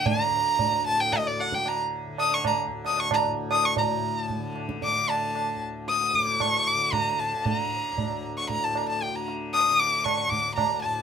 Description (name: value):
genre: indian classical, Hindustani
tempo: 114 BPM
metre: 7/4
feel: straight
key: unclear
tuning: A4 = 440 Hz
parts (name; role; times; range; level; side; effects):
- warm violin; melody; 0.0-11.0 s; D5 to Eb6; -24 LUFS; equal; none
- tanpura; drone; 0.0-11.0 s; D2 to D3; -34 LUFS; left 3 dB; none
- tabla; percussion; 0.1-11.0 s; none; -30 LUFS; right 4 dB; none
room: moderate studio ambience, RT60 0.5 s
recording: minimal, uncompressed stereo recording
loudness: -23 LUFS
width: side -7 dB against mid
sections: 0.0-3.8 A section; 3.8-11.0 B section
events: none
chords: none